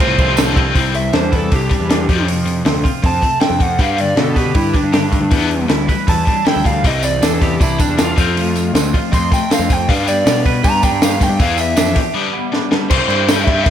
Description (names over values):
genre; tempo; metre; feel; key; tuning
indie rock; 158 BPM; 4/4; straight; C major; A4 = 440 Hz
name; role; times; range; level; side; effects
crunchy overdriven guitar; melody; 0.0-13.7 s; D4 to C6; -19 LUFS; right 1 dB; slapback echo
overdriven electric guitar; riff; 0.0-13.7 s; F2 to G4; -21 LUFS; left 8 dB; tremolo
twangy electric guitar; riff; 0.0-12.9 s; A2 to B4; -24 LUFS; right 7 dB; lush chorus, slapback echo
compact cocktail drum kit; drums; 0.0-13.7 s; crash cymbal, hi-hat, kick drum, ride cymbal, snare drum; -16 LUFS; equal; none
fuzz picked electric bass; bass; 0.1-13.6 s; C2 to B2; -20 LUFS; equal; overdrive
tambourine; percussion; 0.4-0.5, 7.0-13.4 s; none; -29 LUFS; right 10 dB; none
room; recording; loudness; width
light reverb, studio reverb; none; -12 LUFS; side -10 dB against mid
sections
0.7-12.9 A section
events
overdriven electric guitar solo 0.7-12.9; break 12.1-12.9; drum fill 12.5-12.9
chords
0.0 Fmaj7; 0.7 Cadd9; 2.1 F; 3.8 Gadd9; 5.3 Em7; 6.8 Cadd9; 8.2 F; 9.9 Gadd9; 11.4 Em7; 12.1 G; 12.9 C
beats
0.37 | 0.75 1.13 1.51 1.89 | 2.27 2.65 3.03 3.41 | 3.79 4.18 4.56 4.94 | 5.32 5.70 6.08 6.46 | 6.84 7.22 7.60 7.98 | 8.36 8.74 9.12 9.50 | 9.88 10.26 10.64 11.02 | 11.39 11.77 12.15 12.53 | 12.90 13.28 13.66